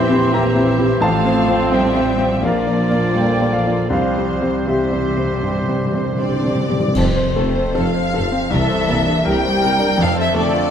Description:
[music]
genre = classical, romantic movement for piano and orchestra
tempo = 80 BPM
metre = 4/4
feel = uneven beats, rubato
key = F major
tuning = A4 = 440 Hz
[part]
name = rich studio violin section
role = melody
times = 0.0-10.5 s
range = A4 to F5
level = -31 LUFS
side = left 3 dB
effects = none
[part]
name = warm grand piano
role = melody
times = 0.0-10.7 s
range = A1 to D6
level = -19 LUFS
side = left 1 dB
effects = none
[part]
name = mellow clarinet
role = second line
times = 0.0-6.6 s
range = G4 to Bb4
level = -28 LUFS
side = left 1 dB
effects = none
[part]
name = silver concert flute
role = second line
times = 0.0-6.2 s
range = E5 to C6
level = -29 LUFS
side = equal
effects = none
[part]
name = warm oboe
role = second line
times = 0.0-6.6 s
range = C5 to D5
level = -28 LUFS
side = right 2 dB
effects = none
[part]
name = warm studio violin section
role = second line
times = 0.0-10.7 s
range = Bb3 to G5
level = -23 LUFS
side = left 3 dB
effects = none
[part]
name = dark bassoon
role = accompaniment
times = 0.0-6.6 s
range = E3 to G3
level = -27 LUFS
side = right 3 dB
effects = none
[part]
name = rich symphonic viola section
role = accompaniment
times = 0.0-10.7 s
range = G3 to Bb4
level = -25 LUFS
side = right 2 dB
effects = none
[part]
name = mellow French horn section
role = sustained chords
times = 0.0-6.6 s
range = E3 to D4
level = -28 LUFS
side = left 3 dB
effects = none
[part]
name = rich studio double bass section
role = bass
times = 0.0-10.4 s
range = A1 to F2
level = -26 LUFS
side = right 1 dB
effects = none
[part]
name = warm studio cello section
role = bass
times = 0.0-10.7 s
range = C3 to C4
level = -25 LUFS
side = right 2 dB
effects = none
[part]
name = timpani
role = percussion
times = 3.9-9.6 s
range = C3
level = -25 LUFS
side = equal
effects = none
[part]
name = warm tuba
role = bass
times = 7.0-10.5 s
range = F1 to C2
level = -26 LUFS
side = right 3 dB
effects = none
[part]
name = clash cymbals and concert bass drum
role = percussion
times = 7.0-8.5 s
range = none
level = -27 LUFS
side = equal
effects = none
[sound]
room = moderate scoring stage reverb, RT60 1.5 s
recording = vinyl crackle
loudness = -15 LUFS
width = side -8 dB against mid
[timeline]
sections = 0.0-7.0 A section; 7.0-10.7 B section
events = timpani fill 3.9-7.0; band accent 7.0-7.8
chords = 0.0 C7/Bb; 1.0 F/A; 2.4 Bb; 3.9 C; 7.0 F; 8.5 C9; 10.0 F

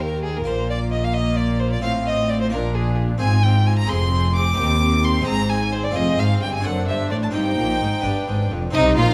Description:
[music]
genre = classical, baroque-style concerto movement with solo episodes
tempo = 87 BPM (dotted quarters)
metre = 6/8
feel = straight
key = C minor from 3.2 s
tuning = A4 = 440 Hz
[part]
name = clear violin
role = melody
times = 0.0-9.1 s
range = Eb4 to D6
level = -27 LUFS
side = equal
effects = none
[part]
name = warm chamber violin section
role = melody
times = 0.0-9.1 s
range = F4 to F5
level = -35 LUFS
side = equal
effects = none
[part]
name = rich chamber violin section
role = second line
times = 0.0-9.1 s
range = Eb4 to D6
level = -32 LUFS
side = equal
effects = none
[part]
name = clear chamber viola section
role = accompaniment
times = 0.0-9.1 s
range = Bb3 to Eb4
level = -31 LUFS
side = equal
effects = none
[part]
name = harpsichord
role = accompaniment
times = 0.0-9.1 s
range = Eb2 to Bb4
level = -32 LUFS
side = equal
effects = none
[part]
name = rich symphonic double bass section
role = bass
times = 0.0-9.1 s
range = F1 to Eb2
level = -26 LUFS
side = equal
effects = none
[part]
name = warm studio cello section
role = bass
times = 0.0-9.0 s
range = Eb2 to C3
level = -26 LUFS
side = equal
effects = none
[sound]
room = moderate recital hall reverb, RT60 1.6 s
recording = none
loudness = -20 LUFS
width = mono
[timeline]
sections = 0.0-8.7 A section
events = none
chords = 0.5 Bb5; 1.8 F/A; 2.5 Bb; 3.2 Fm/Ab; 3.9 Fm; 4.6 Cm/Eb; 5.3 Ab; 6.0 Fm; 6.6 D7/F#; 7.3 Cm/G; 8.0 G

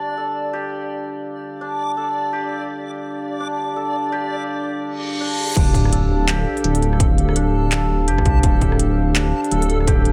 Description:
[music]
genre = half-time drum and bass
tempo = 167 BPM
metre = 4/4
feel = swing 59% on 16ths, half-time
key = D minor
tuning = A4 = 439 Hz
[part]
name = dark analog pad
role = sustained chords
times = 0.0-10.1 s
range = D4 to F5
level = -28 LUFS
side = equal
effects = chorus, sidechain pumping
[part]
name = santur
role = arpeggios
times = 0.0-10.1 s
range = D4 to A4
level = -28 LUFS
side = equal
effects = tape echo
[part]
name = backwards swelling texture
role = texture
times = 0.0-10.1 s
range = A4 to D5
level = -33 LUFS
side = equal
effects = built-in reverb
[part]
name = reverse cymbal and sub drop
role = sound effects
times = 5.0-7.0 s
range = none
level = -28 LUFS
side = equal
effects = none
[part]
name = dark detuned saw bass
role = bass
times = 5.6-10.1 s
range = D1 to C2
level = -21 LUFS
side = equal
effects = none
[part]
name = electronic kick drum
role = drums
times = 5.6-10.0 s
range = none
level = -20 LUFS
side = equal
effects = distortion
[part]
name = organic electronic drum kit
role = drums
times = 5.6-10.1 s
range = crash cymbal, handclaps, hi-hat, rim click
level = -28 LUFS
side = equal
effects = none
[sound]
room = light reverb, digital ambience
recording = none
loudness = -20 LUFS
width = mono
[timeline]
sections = 0.0-5.6 A section; 5.6-10.1 B section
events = reverse cymbal 5.0-5.6; drop 5.6-10.1; impact 5.6-7.0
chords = 0.0 Dm

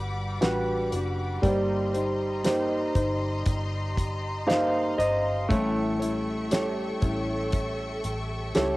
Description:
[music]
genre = pop ballad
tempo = 59 BPM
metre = 4/4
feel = straight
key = unclear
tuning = A4 = 436 Hz
[part]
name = clear concert grand piano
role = accompaniment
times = 0.0-8.8 s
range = G3 to F5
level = -28 LUFS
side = right 1 dB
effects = cassette tape
[part]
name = bright studio string section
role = sustained chords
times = 0.0-8.8 s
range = G3 to D6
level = -36 LUFS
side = left 1 dB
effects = cassette tape
[part]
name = nylon-string guitar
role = arpeggios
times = 0.0-8.8 s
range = A2 to C#5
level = -32 LUFS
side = left 3 dB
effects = cassette tape
[part]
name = vintage muted fingered electric bass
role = bass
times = 0.0-8.8 s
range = F#1 to C#2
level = -32 LUFS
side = equal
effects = none
[part]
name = damped 70s drum kit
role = drums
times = 0.4-8.8 s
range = hi-hat, kick drum, snare drum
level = -27 LUFS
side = equal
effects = cassette tape
[sound]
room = light reverb, studio ambience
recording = home recording on cassette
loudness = -24 LUFS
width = side -19 dB against mid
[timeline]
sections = 0.0-8.8 A section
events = grand piano fill 4.0-5.5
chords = 0.0 Gmaj7; 1.4 Eb6/G; 5.5 A7

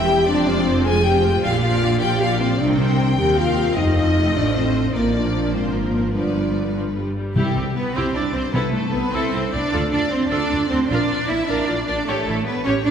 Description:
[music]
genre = cinematic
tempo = 102 BPM (dotted quarters)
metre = 12/8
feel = straight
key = C major from 7.4 s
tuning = A4 = 441 Hz
[part]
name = warm symphonic violin section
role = melody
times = 0.0-12.9 s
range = G4 to G5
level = -30 LUFS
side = left 4 dB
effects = none
[part]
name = warm symphonic violin section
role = second line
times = 0.0-12.9 s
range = G4 to Ab5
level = -26 LUFS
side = left 2 dB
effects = none
[part]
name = clear symphonic viola section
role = accompaniment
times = 0.0-12.9 s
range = D3 to C#5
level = -27 LUFS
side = right 1 dB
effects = none
[part]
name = dark French horn section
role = sustained chords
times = 0.0-6.7 s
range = Bb3 to Ab4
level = -21 LUFS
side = left 2 dB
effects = none
[part]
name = rich symphonic cello section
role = bass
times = 0.0-12.9 s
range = Eb2 to E4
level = -23 LUFS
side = right 2 dB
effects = none
[part]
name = rich symphonic double bass section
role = bass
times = 0.0-12.9 s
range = E1 to Eb2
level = -25 LUFS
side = right 2 dB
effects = none
[part]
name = timpani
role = percussion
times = 7.4-9.1 s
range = C3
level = -25 LUFS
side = left 1 dB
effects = none
[sound]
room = wet church reverb, RT60 2.6 s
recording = recorded in a church or concert hall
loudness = -17 LUFS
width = side -8 dB against mid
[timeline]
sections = 0.0-7.4 A section; 7.4-12.9 B section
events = none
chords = 0.3 Fm; 1.4 Bb; 2.6 Cm; 3.8 F7; 4.9 Bb; 6.1 G7; 7.4 C; 8.5 Am/C; 9.7 Dm; 10.9 Bb; 12.1 A7

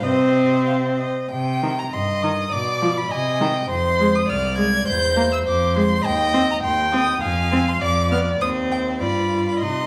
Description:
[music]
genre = quick classical-period movement for string quartet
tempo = 92-103 BPM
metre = 2/4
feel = rubato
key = C minor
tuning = A4 = 436 Hz
[part]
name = rich violin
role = melody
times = 0.0-9.9 s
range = Eb5 to Ab6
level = -27 LUFS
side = equal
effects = none
[part]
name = rich violin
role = second line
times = 0.0-9.9 s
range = C5 to G5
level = -25 LUFS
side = equal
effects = none
[part]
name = clear viola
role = accompaniment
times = 0.0-9.9 s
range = Eb3 to F4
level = -26 LUFS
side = equal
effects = none
[part]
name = rich cello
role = bass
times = 0.0-9.9 s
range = C2 to C3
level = -27 LUFS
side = equal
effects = none
[sound]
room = wet recital hall reverb, RT60 1.4 s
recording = recorded in a church or concert hall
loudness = -20 LUFS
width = mono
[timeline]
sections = 0.0-1.3 A section; 1.3-9.9 B section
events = none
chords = 0.0 Cm; 2.5 Bdim; 3.1 Cm; 3.7 Fm; 4.9 C7/E; 5.5 Fm; 6.0 Cm/Eb; 7.2 Fm; 7.8 Bdim/F; 8.4 Cm/Eb; 9.0 G7

